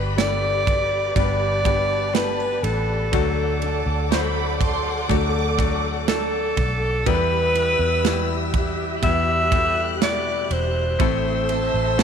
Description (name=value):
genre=pop ballad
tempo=61 BPM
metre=4/4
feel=straight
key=G major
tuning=A4 = 440 Hz
part: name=bright concert grand piano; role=accompaniment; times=0.0-12.0 s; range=G2 to C5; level=-27 LUFS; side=left 12 dB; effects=none
part: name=warm studio string section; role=sustained chords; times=0.0-12.0 s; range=G4 to F#6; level=-30 LUFS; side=left 2 dB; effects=none
part: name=fingerpicked steel-string acoustic guitar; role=arpeggios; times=0.0-12.0 s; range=A2 to B4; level=-33 LUFS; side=right 11 dB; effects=none
part: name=vintage muted fingered electric bass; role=bass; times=0.0-12.0 s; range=E1 to E2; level=-26 LUFS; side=equal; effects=none
part: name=warm alto saxophone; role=melody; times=0.2-12.0 s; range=A4 to E5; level=-23 LUFS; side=right 1 dB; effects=slapback echo
part: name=modern studio drum kit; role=drums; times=0.2-12.0 s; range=kick drum, ride cymbal, snare drum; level=-25 LUFS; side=right 3 dB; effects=none
part: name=rich studio violin section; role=second line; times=3.6-12.0 s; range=A5 to D6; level=-30 LUFS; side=right 12 dB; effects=none
room=light reverb, studio reverb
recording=1960s-style stereo with parts hard left and right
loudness=-19 LUFS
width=side -7 dB against mid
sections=0.0-12.0 A section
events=none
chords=0.0 G; 3.1 D; 7.1 Em; 11.0 Am